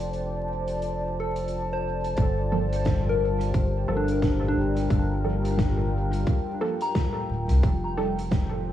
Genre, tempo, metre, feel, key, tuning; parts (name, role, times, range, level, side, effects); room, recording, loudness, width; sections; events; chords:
ambient dub; 88 BPM; 4/4; swing 60% on 16ths; G minor; A4 = 441 Hz
deep dark ambient pad; sustained chords; 0.0-8.7 s; G3 to A5; -31 LUFS; equal; chorus, built-in reverb
soft synth bell; arpeggios; 0.0-7.8 s; D4 to Bb5; -31 LUFS; left 2 dB; chorus, phaser, analog delay
soft dub sub bass; bass; 0.0-8.7 s; D1 to C2; -26 LUFS; equal
soft-mallet drum kit; drums; 0.0-8.5 s; hi-hat, snare drum; -35 LUFS; right 2 dB; cassette tape, dub echo
electronic kick drum; drums; 2.2-8.5 s; -25 LUFS; equal; cassette tape
filtered dub chord stab; stabs; 2.5-8.1 s; F3 to A4; -32 LUFS; right 3 dB; phaser, analog chorus, dub echo
small room ambience; home recording on cassette, vinyl crackle, studio ambience; -23 LUFS; side -12 dB against mid
0.0-2.2 A section; 2.2-8.7 B section
filter sweep on synth bell 0.0-2.2
0.0 F69; 2.2 Gm9; 7.6 F13